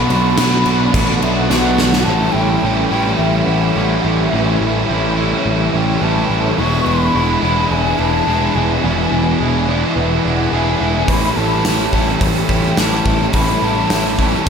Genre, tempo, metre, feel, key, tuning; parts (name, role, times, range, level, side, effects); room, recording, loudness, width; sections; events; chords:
rock, shoegaze and dream pop; 106 BPM; 4/4; straight; A4 = 440 Hz
breathy hollow jazz flute; melody; 0.0-14.5 s; E5 to C#6; -22 LUFS; left 2 dB; analog delay
direct-recorded clean electric guitar; arpeggios; 0.0-14.5 s; E3 to G#4; -27 LUFS; right 7 dB; analog chorus, analog delay
cranked stack guitar; riff; 0.0-14.5 s; E2 to F#4; -20 LUFS; right 6 dB; overdrive, reverse reverb
overdriven semi-hollow guitar; riff; 0.0-14.5 s; E2 to F#4; -20 LUFS; left 6 dB; wide subtle chorus
tight distorted guitar; riff; 0.0-14.5 s; A2 to E4; -23 LUFS; right 1 dB; distortion
growling picked electric bass; bass; 0.0-14.5 s; E1 to B1; -20 LUFS; equal; overdrive
gated 80s drum kit; drums; 0.1-2.1, 11.1-14.5 s; crash cymbal, hi-hat, kick drum, snare drum; -19 LUFS; equal
tambourine; percussion; 0.4-1.6, 11.6-14.0 s; -33 LUFS; left 10 dB
wet lush hall reverb, RT60 2.3 s; dreamy mix soaked in reverb; -13 LUFS; side -6 dB against mid
0.0-2.1 A section; 2.1-14.5 B section
drum fill 1.5-2.1
0.0 Bm7; 2.1 A7; 6.6 E7; 11.1 A7